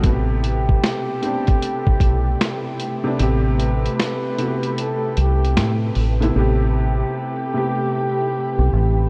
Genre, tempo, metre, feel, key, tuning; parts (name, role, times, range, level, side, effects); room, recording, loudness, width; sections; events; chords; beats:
lo-fi hip hop; 76 BPM; 4/4; swing 64% on 16ths; A minor; A4 = 440 Hz
felt-muted upright piano; accompaniment; 0.0-9.1 s; C3 to G4; -26 LUFS; equal; cassette tape, low-pass filter
ensemble organ-string; sustained chords; 0.0-9.1 s; A3 to B4; -34 LUFS; equal; phaser, ensemble chorus, low-pass filter
deep dub fingered electric bass; bass; 0.0-9.1 s; A1 to A2; -21 LUFS; equal
lo-fi sampler-style drum kit; drums; 0.0-6.4 s; finger snaps, hi-hat, kick drum, snare drum; -23 LUFS; equal; vintage 12-bit sampler grit
breathy flugelhorn; melody; 0.5-9.1 s; G4 to B4; -28 LUFS; equal; low-pass filter
light reverb; -20 LUFS; mono
0.0-6.4 A section; 6.4-9.1 B section
kick muted 3.2-6.4
0.0 Am9
| 0.04 0.83 1.62 2.41 | 3.20 3.99 4.78 5.57 | 6.36 7.15 7.94 8.73